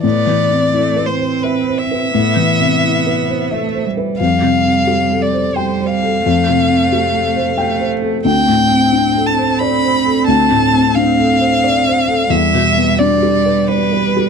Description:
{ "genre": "neoclassical piano and strings", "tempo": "88 BPM", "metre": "3/4", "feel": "rubato", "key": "A minor", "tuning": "A4 = 440 Hz", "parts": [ { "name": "rich violin", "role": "melody", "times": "0.0-14.3 s", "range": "B4 to B5", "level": "-16 LUFS", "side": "left 1 dB", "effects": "none" }, { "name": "rich cello", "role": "second line", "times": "0.0-14.3 s", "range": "G3 to C4", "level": "-19 LUFS", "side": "right 8 dB", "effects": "none" }, { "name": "felt-muted upright piano", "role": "accompaniment", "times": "0.0-14.3 s", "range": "D2 to G5", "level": "-16 LUFS", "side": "left 3 dB", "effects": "none" } ], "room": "light reverb", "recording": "dark, warm production", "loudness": "-12 LUFS", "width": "side -6 dB against mid", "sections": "0.0-14.3 A section", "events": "none", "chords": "0.0 Amadd9; 4.2 Fadd9; 8.3 Dm7; 12.3 Em7" }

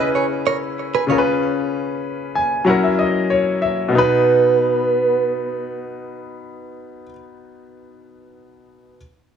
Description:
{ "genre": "afrobeats", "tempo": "95 BPM", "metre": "4/4", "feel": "straight", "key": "B major", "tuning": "A4 = 440 Hz", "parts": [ { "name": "warm grand piano", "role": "accompaniment", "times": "0.0-9.0 s", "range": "B2 to G#5", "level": "-19 LUFS", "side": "left 2 dB", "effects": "none" }, { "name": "direct-recorded clean electric guitar", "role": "riff", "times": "0.0-1.2 s", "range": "G#4 to C#5", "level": "-22 LUFS", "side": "right 8 dB", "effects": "digital delay" }, { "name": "soft octave-layered synth lead", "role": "melody", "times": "3.9-5.8 s", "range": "B4", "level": "-17 LUFS", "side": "right 4 dB", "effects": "chorus, digital delay" } ], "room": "light reverb, digital ambience", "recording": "small room ambience", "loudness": "-16 LUFS", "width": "side -8 dB against mid", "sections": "0.0-3.9 A section; 3.9-6.5 B section", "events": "grand piano fill 2.0-3.9", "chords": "0.0 C#m7; 1.1 C#7; 2.7 F#7; 3.9 B" }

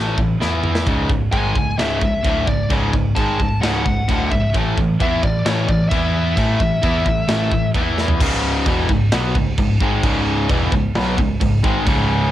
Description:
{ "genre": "heavy metal", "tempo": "131 BPM", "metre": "4/4", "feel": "straight", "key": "C# phrygian", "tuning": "A4 = 440 Hz", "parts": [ { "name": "distorted electric guitar", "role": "riff", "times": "0.0-12.3 s", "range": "C#2 to E4", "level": "-22 LUFS", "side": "left 5 dB", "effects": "overdrive, cassette tape" }, { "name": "tight distorted guitar", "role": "riff", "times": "0.0-12.3 s", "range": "C#2 to E4", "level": "-24 LUFS", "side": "right 7 dB", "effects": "distortion, cassette tape" }, { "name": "overdriven picked electric bass", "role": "bass", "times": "0.0-12.3 s", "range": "C#1 to E2", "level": "-24 LUFS", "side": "equal", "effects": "none" }, { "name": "tight metal drum kit", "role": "drums", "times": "0.2-12.0 s", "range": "china cymbal, crash cymbal, kick drum, snare drum, toms", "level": "-21 LUFS", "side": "equal", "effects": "cassette tape" }, { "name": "crunchy overdriven guitar", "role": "riff", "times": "0.9-12.3 s", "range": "C#2 to E4", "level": "-24 LUFS", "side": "right 1 dB", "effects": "cassette tape" }, { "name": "high-gain lead guitar", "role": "melody", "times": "1.3-7.7 s", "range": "C#5 to A5", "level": "-24 LUFS", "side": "left 2 dB", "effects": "distortion, cassette tape" } ], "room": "small room reverb", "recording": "home recording on cassette", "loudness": "-16 LUFS", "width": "side -13 dB against mid", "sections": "0.0-8.2 A section; 8.2-12.3 B section", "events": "drum fill 0.4-0.9, 8.0", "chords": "0.4 E5; 0.9 C#m; 4.5 A5; 5.9 E5; 6.4 A5; 7.8 E5; 8.2 C#m" }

